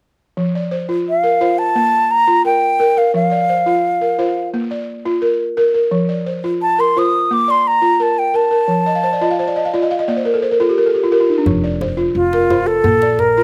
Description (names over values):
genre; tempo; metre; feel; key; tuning
west african traditional, West African string and xylophone music; 87 BPM; 4/4; straight; F mixolydian; A4 = 440 Hz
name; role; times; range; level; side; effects
balafon; arpeggios; 0.4-13.4 s; F3 to F5; -19 LUFS; equal; none
mellow concert flute; melody; 1.1-13.4 s; F4 to Eb6; -17 LUFS; equal; none
upright bass; bass; 11.5-13.4 s; F1 to Bb1; -26 LUFS; equal; none
djembe; percussion; 11.5-13.4 s; none; -26 LUFS; equal; none
room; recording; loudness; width
little or no reverb; recorded outdoors, with no room sound; -16 LUFS; mono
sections
0.4-11.5 A section; 11.5-13.4 A section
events
balafon fill 8.9-11.5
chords
0.4 F5; 1.8 Bb5; 3.1 F5; 4.5 Bb; 5.9 F5; 7.3 Bb; 8.7 F; 10.1 Bb5; 11.5 F5; 12.8 Bb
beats
| 0.38 1.07 1.76 2.45 | 3.15 3.84 4.53 5.22 | 5.91 6.61 7.30 7.99 | 8.69 9.38 10.07 10.77 | 11.46 12.15 12.85